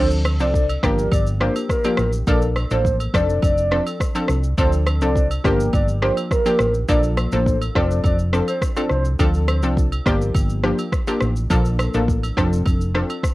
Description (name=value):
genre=afrobeats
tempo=104 BPM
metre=4/4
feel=straight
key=unclear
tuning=A4 = 445 Hz
part: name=soft octave-layered synth lead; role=melody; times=0.0-9.0 s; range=Bb4 to D5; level=-24 LUFS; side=right 1 dB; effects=chorus, phaser, cassette tape, plate reverb, analog delay
part: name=analog pluck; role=accompaniment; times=0.0-13.1 s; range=F3 to A4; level=-23 LUFS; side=left 1 dB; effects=chorus, cassette tape, plate reverb
part: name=hollow-body short-scale fingered electric bass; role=bass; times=0.0-13.0 s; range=F1 to D2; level=-21 LUFS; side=equal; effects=none
part: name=afro-pop drum kit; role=drums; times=0.1-13.3 s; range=kick drum, rim click, shaker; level=-22 LUFS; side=equal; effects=cassette tape
part: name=agogo bells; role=percussion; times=0.3-13.2 s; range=none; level=-34 LUFS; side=right 4 dB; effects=none
room=light reverb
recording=home recording on cassette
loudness=-17 LUFS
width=side -18 dB against mid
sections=0.0-13.3 A section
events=none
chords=0.0 Dm7; 0.8 Gm7; 2.3 Bbmaj7; 3.1 F6; 4.6 Dm7; 5.4 Gm7; 6.9 Bbmaj7; 7.8 F6; 9.2 Dm7; 10.1 Gm7; 11.5 Bbmaj7; 12.4 F6